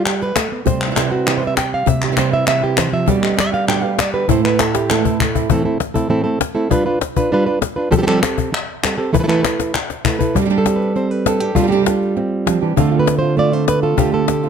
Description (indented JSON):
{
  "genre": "flamenco",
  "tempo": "198 BPM",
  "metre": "4/4",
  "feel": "straight",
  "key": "unclear",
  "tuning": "A4 = 440 Hz",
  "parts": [
    { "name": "flamenco guitar", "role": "melody", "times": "0.0-14.5 s", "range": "A2 to G5", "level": "-16 LUFS", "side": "right 2 dB", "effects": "none" },
    { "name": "palmas hand claps", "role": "percussion", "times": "0.1-5.3, 8.1-10.2 s", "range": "none", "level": "-22 LUFS", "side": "left 3 dB", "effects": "none" },
    { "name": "cajon", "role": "percussion", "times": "0.2-14.5 s", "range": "none", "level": "-20 LUFS", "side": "left 9 dB", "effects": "none" },
    { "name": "flamenco guitar", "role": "stabs", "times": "0.7-5.5, 10.3-14.5 s", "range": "G2 to G4", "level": "-22 LUFS", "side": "right 10 dB", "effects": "none" }
  ],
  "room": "light reverb",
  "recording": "close, detailed microphones",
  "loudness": "-14 LUFS",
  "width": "side -7 dB against mid",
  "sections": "0.0-5.5 A section; 5.5-10.3 B section; 10.3-14.5 C section",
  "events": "nylon-string guitar solo 0.0-5.5; drum fill 4.7-5.5, 9.6-10.3",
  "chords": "0.0 G; 0.7 C; 3.1 G; 4.3 Am; 6.7 G7; 7.9 Fadd9; 9.1 Esus4; 10.3 Gsus4; 12.8 Dm7",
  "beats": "0.06 0.36 | 0.66 0.96 1.26 1.57 | 1.87 2.17 2.47 2.77 | 3.08 3.38 3.68 3.98 | 4.29 4.59 4.89 5.19 | 5.50 5.80 6.10 6.41 | 6.71 7.01 7.32 7.62 | 7.92 8.22 8.53 8.83 | 9.13 9.44 9.74 10.04 | 10.35 10.65 10.95 11.26 | 11.56 11.86 12.16 12.47 | 12.77 13.07 13.37 13.67 | 13.98 14.28"
}